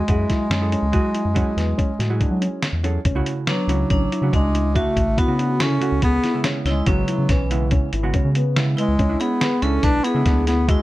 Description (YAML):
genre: progressive instrumental, band music in an uneven meter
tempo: 142 BPM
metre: 7/4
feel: straight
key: unclear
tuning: A4 = 440 Hz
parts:
  - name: warm bass clarinet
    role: melody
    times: 0.0-10.8 s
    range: E3 to D4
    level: -23 LUFS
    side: equal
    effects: tape echo
  - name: hollow-body jazz guitar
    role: accompaniment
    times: 0.0-10.8 s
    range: C#3 to A4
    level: -27 LUFS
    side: right 4 dB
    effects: none
  - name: round analog bass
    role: bass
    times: 0.0-10.8 s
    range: G#1 to F#3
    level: -22 LUFS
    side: equal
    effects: none
  - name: dark concert grand piano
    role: arpeggios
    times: 0.1-10.8 s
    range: B3 to G#4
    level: -29 LUFS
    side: left 4 dB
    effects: none
  - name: lo-fi sampler-style drum kit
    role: drums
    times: 0.1-10.8 s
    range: hi-hat, kick drum, snare drum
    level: -22 LUFS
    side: equal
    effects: none
  - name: vibraphone with hard mallets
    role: second line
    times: 3.5-10.8 s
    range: C#4 to B4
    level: -28 LUFS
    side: right 1 dB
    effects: tape echo
room: light reverb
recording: none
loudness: -17 LUFS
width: side -16 dB against mid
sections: 0.0-3.1 A section; 3.1-10.8 B section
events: none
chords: 0.1 F#m9; 3.1 Dmaj7; 6.0 C#m7; 9.0 E7